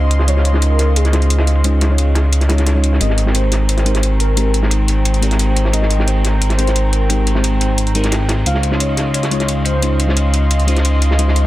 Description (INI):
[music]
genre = liquid drum and bass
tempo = 176 BPM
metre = 4/4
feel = straight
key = Ab major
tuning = A4 = 439 Hz
[part]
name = mellow FM electric piano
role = accompaniment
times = 0.0-11.5 s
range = Ab3 to Db5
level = -21 LUFS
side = left 2 dB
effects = chorus
[part]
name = warm analog pad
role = sustained chords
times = 0.0-11.5 s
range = C5 to C6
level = -25 LUFS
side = right 1 dB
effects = chorus
[part]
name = smooth synth bass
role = bass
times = 0.0-11.5 s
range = Ab1 to Db2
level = -14 LUFS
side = equal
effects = none
[part]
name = crunchy breakbeat drum kit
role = drums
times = 0.1-11.5 s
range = hi-hat, ride cymbal, snare drum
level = -24 LUFS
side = equal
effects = high-pass filter on cymbals, low-pass filter on cymbals, high-pass filter on hats, low-pass filter on hats, high-pass filter on snare, low-pass filter on snare, high-pass filter on room, low-pass filter on room
[part]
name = electronic hi-hat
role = drums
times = 0.1-11.4 s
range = none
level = -23 LUFS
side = left 1 dB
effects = none
[part]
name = warm velvety synth lead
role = melody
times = 0.3-11.5 s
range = Ab4 to F5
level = -25 LUFS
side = left 1 dB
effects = chorus, digital delay
[sound]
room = light reverb, small room ambience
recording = dense, heavily limited modern master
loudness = -13 LUFS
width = side -16 dB against mid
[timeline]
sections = 0.0-11.5 A section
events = none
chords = 0.0 Dbmaj7; 3.0 Abmaj9; 8.5 Dbmaj7